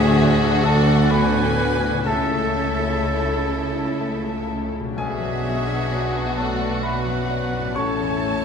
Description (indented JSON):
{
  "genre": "cinematic",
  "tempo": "64 BPM",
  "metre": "3/4",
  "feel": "rubato",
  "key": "A major",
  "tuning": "A4 = 441 Hz",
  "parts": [
    { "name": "warm symphonic violin section", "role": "melody", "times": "0.0-8.4 s", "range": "F#4 to A4", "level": "-27 LUFS", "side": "left 3 dB", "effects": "none" },
    { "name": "clear oboe", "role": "second line", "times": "0.0-8.4 s", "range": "G#4 to C#5", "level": "-29 LUFS", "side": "right 2 dB", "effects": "none" },
    { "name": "rich studio violin section", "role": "second line", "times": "0.0-8.4 s", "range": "E5 to A5", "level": "-31 LUFS", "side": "left 1 dB", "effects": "none" },
    { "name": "bright grand piano", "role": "accompaniment", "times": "0.0-8.4 s", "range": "A1 to C#6", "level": "-26 LUFS", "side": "left 1 dB", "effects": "none" },
    { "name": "clear symphonic viola section", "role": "accompaniment", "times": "0.0-8.4 s", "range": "A3 to E4", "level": "-32 LUFS", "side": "equal", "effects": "none" },
    { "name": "mellow French horn section", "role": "sustained chords", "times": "0.0-8.4 s", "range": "G#3 to G#4", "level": "-28 LUFS", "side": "left 3 dB", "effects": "none" },
    { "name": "concert harp", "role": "arpeggios", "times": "0.0-8.4 s", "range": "A2 to B4", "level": "-33 LUFS", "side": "left 5 dB", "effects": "none" },
    { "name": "rich symphonic double bass section", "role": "bass", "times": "0.0-8.4 s", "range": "A1 to D2", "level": "-25 LUFS", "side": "right 2 dB", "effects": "none" },
    { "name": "warm symphonic cello section", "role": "bass", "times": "0.0-8.4 s", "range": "A2 to D3", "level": "-27 LUFS", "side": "right 1 dB", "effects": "none" },
    { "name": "mellow clarinet", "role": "second line", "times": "0.2-8.4 s", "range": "A4 to E5", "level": "-33 LUFS", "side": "left 3 dB", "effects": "none" }
  ],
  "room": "wet scoring stage reverb, RT60 1.6 s",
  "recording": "minimal, uncompressed stereo recording",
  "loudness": "-19 LUFS",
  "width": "side -6 dB against mid",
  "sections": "0.0-8.4 A section",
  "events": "none",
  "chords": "0.0 D; 2.1 A/C#; 5.0 Bmadd9; 7.8 A"
}